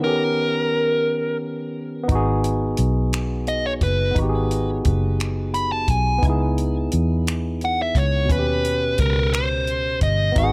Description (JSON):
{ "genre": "slow six-eight R&B", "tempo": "58 BPM (dotted quarters)", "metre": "6/8", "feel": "straight", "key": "unclear", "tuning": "A4 = 440 Hz", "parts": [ { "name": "dark smooth lead guitar", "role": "melody", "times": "0.0-10.5 s", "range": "A#4 to B5", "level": "-25 LUFS", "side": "equal", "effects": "overdrive" }, { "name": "barky tine electric piano", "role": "accompaniment", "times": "0.0-10.5 s", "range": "B2 to A#4", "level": "-28 LUFS", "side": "equal", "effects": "overdrive" }, { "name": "vintage muted fingered electric bass", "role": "bass", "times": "2.1-10.5 s", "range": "F#1 to E2", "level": "-24 LUFS", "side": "equal", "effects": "none" }, { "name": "compact cocktail drum kit", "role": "drums", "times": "2.1-10.5 s", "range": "finger snaps, hi-hat, kick drum", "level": "-26 LUFS", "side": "equal", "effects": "none" } ], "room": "light reverb, small room ambience", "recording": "none", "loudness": "-21 LUFS", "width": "mono", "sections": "0.0-10.4 A section", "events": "none", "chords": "0.0 D#7b13; 2.1 G#m7; 6.2 C#m9; 8.3 D#7b13", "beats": "| 0.02 1.06 | 2.09 3.12 | 4.16 5.19 | 6.23 7.26 | 8.30 9.33 | 10.37" }